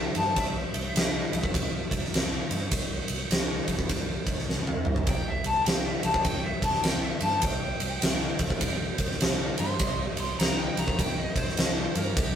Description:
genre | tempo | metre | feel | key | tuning
blues rock power trio and southern rock | 102 BPM | 4/4 | swing 63% on 8ths | C mixolydian | A4 = 440 Hz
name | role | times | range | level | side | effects
overdriven slide guitar | melody | 0.0-12.4 s | G4 to C6 | -31 LUFS | left 2 dB | none
vintage muted picked electric bass | bass | 0.0-12.4 s | C2 to G2 | -35 LUFS | equal | none
huge arena drum kit | drums | 0.1-12.3 s | kick drum, ride cymbal, snare drum, toms | -26 LUFS | equal | none
room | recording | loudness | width
moderate stone room reverb, RT60 1.1 s | rough rehearsal-room recording | -25 LUFS | side -9 dB against mid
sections
0.0-12.4 A section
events
electric slide guitar solo 0.0-12.4; drum fill 4.5-5.1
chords
0.0 C5

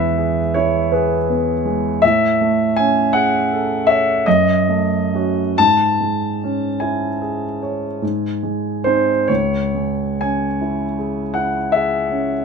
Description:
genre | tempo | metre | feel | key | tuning
classical, romantic nocturne for solo piano | 42-55 BPM (dotted quarters) | 9/8 | rubato | C# minor | A4 = 440 Hz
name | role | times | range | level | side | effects
warm concert grand piano | solo | 0.0-12.4 s | C#2 to A5 | -16 LUFS | equal | none
room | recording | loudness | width
light reverb | close, detailed microphones | -16 LUFS | side -5 dB against mid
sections
0.0-12.4 A section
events
none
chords
0.0 E; 2.0 Amaj7; 4.3 D#m7b5/F#; 5.6 C#m/G#; 8.0 G#; 9.3 C#m

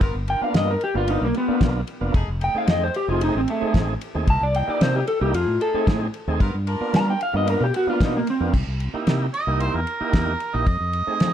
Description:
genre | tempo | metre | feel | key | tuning
straight-eighth soul blues | 113 BPM | 4/4 | straight | unclear | A4 = 441 Hz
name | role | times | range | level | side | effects
warm horn section | sustained chords | 0.0-8.1 s | E3 to G5 | -34 LUFS | left 2 dB | none
fingered electric bass | bass | 0.0-11.3 s | F1 to G3 | -24 LUFS | equal | none
damped 70s drum kit | drums | 0.0-11.3 s | crash cymbal, kick drum, ride cymbal, snare drum | -23 LUFS | equal | none
electric slide guitar | melody | 0.3-8.5 s | A3 to A#5 | -23 LUFS | left 1 dB | plate reverb
tonewheel organ | accompaniment | 0.4-11.3 s | A3 to G#4 | -27 LUFS | right 4 dB | slow rotary speaker, overdrive
mellow harmonica | second line | 9.3-11.3 s | Bb4 to D#5 | -25 LUFS | right 4 dB | overdrive
room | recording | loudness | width
light reverb | none | -19 LUFS | side -10 dB against mid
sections
0.0-8.5 A section; 8.5-11.3 A section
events
electric slide guitar solo 0.0-8.5; harmonica solo 8.5-11.3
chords
0.0 G7#9; 2.1 F7#9; 4.3 C7#9; 5.3 F7#9; 6.4 G7#9; 8.5 C7#9; 10.7 F7#9

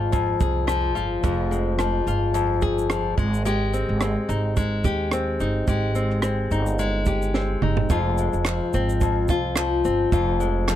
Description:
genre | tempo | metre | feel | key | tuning
acoustic pop | 108 BPM | 4/4 | swing 55% on 16ths | unclear | A4 = 440 Hz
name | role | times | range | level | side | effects
nylon-string guitar | accompaniment | 0.0-10.8 s | F2 to Ab4 | -23 LUFS | left 3 dB | none
upright bass | bass | 0.0-10.8 s | F1 to Eb2 | -25 LUFS | right 1 dB | none
compact cocktail drum kit | drums | 0.1-10.8 s | kick drum, rim click, shaker, snare drum, toms | -25 LUFS | right 3 dB | none
group handclap | percussion | 8.5-10.8 s | none | -29 LUFS | right 4 dB | none
room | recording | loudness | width
little or no reverb | close, detailed microphones | -20 LUFS | side -11 dB against mid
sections
0.0-10.8 A section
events
drum fill 7.3-7.9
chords
0.0 Fm; 3.2 Abmaj7; 7.9 Fm

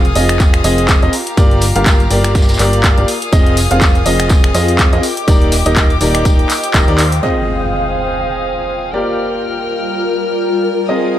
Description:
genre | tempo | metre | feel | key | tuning
piano house | 123 BPM | 4/4 | swing 57% on 16ths | F dorian | A4 = 440 Hz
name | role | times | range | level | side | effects
rich chamber violin section | sustained chords | 0.0-11.2 s | G4 to F6 | -23 LUFS | left 2 dB | sidechain pumping, low-pass filter
clear baby grand piano | riff | 0.0-11.2 s | Bb3 to F5 | -17 LUFS | equal | sidechain pumping, digital delay
plucky analog bass | bass | 0.0-7.2 s | Eb1 to F2 | -16 LUFS | equal | sidechain pumping
punchy analog drum machine | drums | 0.0-7.2 s | finger snaps, handclaps, hi-hat | -18 LUFS | equal | overdrive
granular cloud pad | texture | 0.0-11.2 s | G3 to G5 | -21 LUFS | left 1 dB | built-in reverb, sidechain pumping
vintage brush drum kit | drums | 0.2-7.2 s | hi-hat, snare drum, tambourine | -26 LUFS | equal | high-pass filter on hats, high-pass filter on snare, high-pass filter on perc, high-pass filter on room
electronic kick drum | drums | 0.4-6.9 s | none | -12 LUFS | equal | overdrive
impact | sound effects | 7.2-9.2 s | none | -24 LUFS | equal | none
room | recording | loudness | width
light reverb, studio reverb | none | -11 LUFS | side -12 dB against mid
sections
0.0-7.2 A section; 7.2-11.2 B section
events
drum fill 7.0; band accent 7.0; impact 7.2-9.2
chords
0.0 Fm7; 1.1 Gm7; 3.1 Fm7; 5.0 Ebmaj7; 7.2 Fm7; 8.9 Gm7

